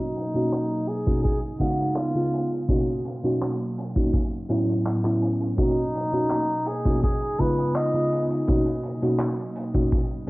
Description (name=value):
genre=vaporwave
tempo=83 BPM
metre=4/4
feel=straight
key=B lydian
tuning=A4 = 440 Hz
part: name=warm flugelhorn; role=melody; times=0.0-8.3 s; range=D#4 to D#5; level=-29 LUFS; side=equal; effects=cassette tape, tape echo
part: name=warbly tape-like pad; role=sustained chords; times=0.0-10.3 s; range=A2 to E#5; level=-33 LUFS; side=equal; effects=none
part: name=modern studio drum kit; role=drums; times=0.2-10.3 s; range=handclaps, hi-hat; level=-39 LUFS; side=equal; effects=low-pass filter on hats, cassette tape, low-pass filter on snare, low-pass filter on room
part: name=FM electric piano with soft pad layer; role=accompaniment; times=0.3-10.3 s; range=A2 to E#5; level=-24 LUFS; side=equal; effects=tremolo, wide subtle chorus, cassette tape, tape echo
part: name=kick drum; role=drums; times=1.1-10.1 s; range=none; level=-25 LUFS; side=equal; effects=cassette tape
room=light reverb, studio reverb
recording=home recording on cassette, low-pass filter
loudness=-22 LUFS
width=side -21 dB against mid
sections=0.0-10.3 A section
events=filter sweep on drum 0.0-10.3; filter sweep 0.0-10.3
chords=0.0 Bmaj7; 1.2 C#9; 2.7 Bmaj7; 4.1 A69; 5.6 Bmaj7; 7.0 C#9; 8.5 Bmaj7